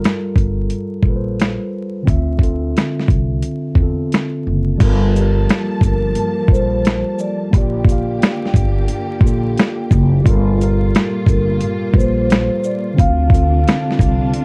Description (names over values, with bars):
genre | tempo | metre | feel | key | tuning
lo-fi hip hop | 88 BPM | 4/4 | swing 65% on 16ths | G minor | A4 = 439 Hz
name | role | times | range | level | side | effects
mellow tine electric piano | accompaniment | 0.0-14.4 s | D3 to F5 | -23 LUFS | equal | cassette tape, low-pass filter
dusty soul sampler-style drum kit | drums | 0.0-14.4 s | crash cymbal, finger snaps, hi-hat, kick drum, shaker, snare drum | -17 LUFS | equal | overdrive
upright bass | bass | 0.4-14.3 s | F#1 to E2 | -20 LUFS | equal | none
warm studio string section | sustained chords | 4.8-14.4 s | Bb2 to A5 | -30 LUFS | equal | none
vibraphone with soft mallets | melody | 5.8-14.4 s | A4 to F5 | -24 LUFS | equal | low-pass filter
room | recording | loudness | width
light reverb | dark, warm production, vinyl crackle | -16 LUFS | mono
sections
0.0-4.8 A section; 4.8-14.4 B section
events
filter sweep 0.0-4.8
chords
0.0 Gm9; 2.1 Dm9; 4.8 Gm9; 7.5 Bb6; 10.3 Gm9; 13.0 Dm7